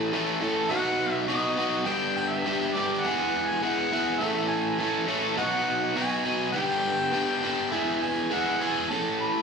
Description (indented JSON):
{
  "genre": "rock",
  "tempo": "102 BPM",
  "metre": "4/4",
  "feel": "straight",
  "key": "unclear",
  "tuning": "A4 = 441 Hz",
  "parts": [
    { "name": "overdriven electric guitar", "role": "riff", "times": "0.0-9.4 s", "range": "G2 to A4", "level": "-25 LUFS", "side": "equal", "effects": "slapback echo" },
    { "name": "mellow harmonica", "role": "melody", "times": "0.7-9.4 s", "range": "D5 to B5", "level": "-29 LUFS", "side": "equal", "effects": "overdrive, slapback echo" }
  ],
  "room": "light reverb, small room ambience",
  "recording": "live gig heard through the venue's PA, club reverb",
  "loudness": "-24 LUFS",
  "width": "side -5 dB against mid",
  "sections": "0.0-9.4 A section",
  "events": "none",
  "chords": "0.0 A; 0.7 B; 1.9 G; 3.0 E/G#; 4.2 A; 5.4 B; 6.6 G; 7.7 E/G#; 8.9 A"
}